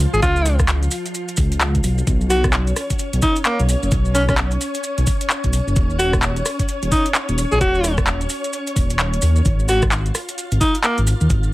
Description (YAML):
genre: UK garage, two-step garage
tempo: 130 BPM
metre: 4/4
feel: swing 60% on 16ths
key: Eb minor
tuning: A4 = 445 Hz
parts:
  - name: soft string machine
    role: sustained chords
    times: 0.0-11.5 s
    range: F3 to F5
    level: -28 LUFS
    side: left 1 dB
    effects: ensemble chorus, sidechain pumping
  - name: dark detuned saw bass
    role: bass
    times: 0.0-11.5 s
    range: Eb1 to Eb2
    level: -18 LUFS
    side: equal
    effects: none
  - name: bright alto saxophone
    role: melody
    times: 0.1-11.0 s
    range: Bb3 to Ab4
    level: -20 LUFS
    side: equal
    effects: tape echo
  - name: maracas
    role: percussion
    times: 0.1-11.5 s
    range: none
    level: -29 LUFS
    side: right 1 dB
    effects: none
  - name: electronic kick drum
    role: drums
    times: 0.2-11.4 s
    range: none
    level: -20 LUFS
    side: equal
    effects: none
  - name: garage drum kit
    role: drums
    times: 0.2-11.4 s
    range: handclaps, hi-hat, rim click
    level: -23 LUFS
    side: equal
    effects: none
room: light reverb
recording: vinyl crackle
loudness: -16 LUFS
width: side -18 dB against mid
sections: 0.0-9.5 A section; 9.5-11.5 A section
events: drop 0.0-9.5, 9.5-11.5; kick drops out 9.0-9.5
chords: 0.0 Db; 1.8 Bsus2; 5.8 Eb5; 9.5 Ab5